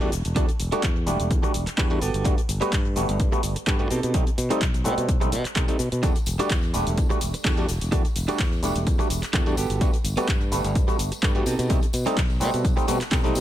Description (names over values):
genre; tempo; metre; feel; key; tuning
filtered disco house; 127 BPM; 4/4; swing 54% on 16ths; E minor; A4 = 443 Hz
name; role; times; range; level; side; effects
overdriven clav; accompaniment; 0.0-13.4 s; G3 to F#5; -28 LUFS; equal; phaser, sidechain pumping, tape echo
direct-recorded clean electric guitar; riff; 0.0-13.4 s; B3 to B4; -30 LUFS; right 5 dB; tremolo, sidechain pumping
modern bright fingered electric bass; bass; 0.0-13.4 s; E1 to B2; -27 LUFS; equal; sidechain pumping
punchy analog drum machine; drums; 0.1-13.4 s; cabasa, handclaps, hi-hat; -31 LUFS; left 1 dB; sidechain pumping on hats, sidechain pumping on perc
electronic kick drum; drums; 0.4-13.2 s; none; -24 LUFS; equal; none
tambourine; percussion; 6.0-13.4 s; none; -40 LUFS; left 4 dB; sidechain pumping on perc, tape echo
room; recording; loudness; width
little or no reverb; echo-heavy mix; -21 LUFS; side -12 dB against mid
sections
0.0-13.4 A section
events
none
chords
0.0 Em11; 2.0 Gmaj9; 3.9 B7b9b13; 6.0 Em11; 9.6 Gmaj9; 11.5 B7b9b13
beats
| 0.36 0.83 1.31 1.78 | 2.25 2.73 3.20 3.67 | 4.14 4.61 5.09 5.56 | 6.03 6.50 6.98 7.45 | 7.92 8.39 8.87 9.34 | 9.81 10.28 10.76 11.23 | 11.70 12.17 12.65 13.12